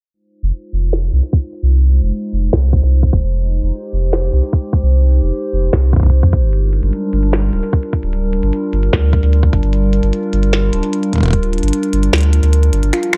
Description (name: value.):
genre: IDM.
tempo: 150 BPM.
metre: 4/4.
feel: straight.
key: F dorian.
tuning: A4 = 440 Hz.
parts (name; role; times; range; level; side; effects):
warbly tape-like pad; sustained chords; 0.1-13.2 s; F3 to C5; -23 LUFS; equal; chorus, built-in reverb, phaser.
warm sub bass; bass; 0.4-12.9 s; D1 to F2; -15 LUFS; equal; none.
glitchy drum kit; drums; 0.9-13.2 s; finger snaps, hi-hat, snare drum; -23 LUFS; equal; none.
electronic kick drum; drums; 1.3-11.4 s; none; -17 LUFS; equal; none.
harp-like synth pluck; arpeggios; 12.9-13.2 s; F4 to C5; -19 LUFS; equal; chorus, phaser, vintage 12-bit sampler grit, tape echo.
room: little or no reverb.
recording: dark, warm production, low-pass filter.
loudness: -15 LUFS.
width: mono.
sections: 0.1-12.9 A section.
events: filter sweep on sub bass 0.1-12.9; filter sweep on ambient pad 0.1-12.9; filter sweep 0.1-12.9; kick drops out 12.1-12.9.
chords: 0.1 Fm7; 6.5 Gm7.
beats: | 0.13 0.53 0.93 1.33 | 1.73 2.13 2.53 2.93 | 3.33 3.73 4.13 4.53 | 4.93 5.33 5.73 6.13 | 6.53 6.93 7.33 7.73 | 8.13 8.53 8.93 9.33 | 9.73 10.13 10.53 10.93 | 11.33 11.73 12.13 12.53 | 12.93.